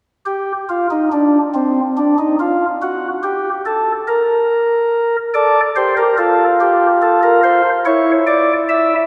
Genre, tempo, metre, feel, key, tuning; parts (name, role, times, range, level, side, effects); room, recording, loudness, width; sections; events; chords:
classical, baroque-style 4-part fugue for pipe organ; 47 BPM (dotted quarters); 6/8; straight; G minor; A4 = 440 Hz
chamber organ, flutes; solo; 0.3-9.0 s; C4 to E5; -15 LUFS; equal
wet church reverb, RT60 3.2 s; heard from further back in the room; -15 LUFS; mono
0.3-9.1 A section
0.3 N.C.; 5.3 Dm; 6.6 Gm; 7.9 C#m/E